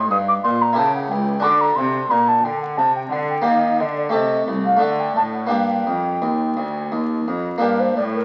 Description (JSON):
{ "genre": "classical, baroque-style sonata movement with continuo", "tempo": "88 BPM", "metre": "3/4", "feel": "rubato", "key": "G minor", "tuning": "A4 = 444 Hz", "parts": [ { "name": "mellow baroque flute", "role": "melody", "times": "0.0-8.2 s", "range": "Bb4 to Eb6", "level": "-22 LUFS", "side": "equal", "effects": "none" }, { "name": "harpsichord", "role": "accompaniment", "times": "0.0-8.2 s", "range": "C2 to C5", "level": "-24 LUFS", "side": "equal", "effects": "none" }, { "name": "rich cello", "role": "bass", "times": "0.0-8.2 s", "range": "C2 to Eb3", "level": "-29 LUFS", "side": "equal", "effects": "none" } ], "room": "moderate stone room reverb, RT60 1.1 s", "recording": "very old 78 rpm record, vinyl crackle, nothing above 8.0 kHz", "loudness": "-19 LUFS", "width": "mono", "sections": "0.0-7.6 A section", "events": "none", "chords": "0.0 Cm; 0.8 C#dim7; 1.4 D; 3.5 Eb; 4.1 Am7b5/C; 4.8 D5; 5.5 Gm" }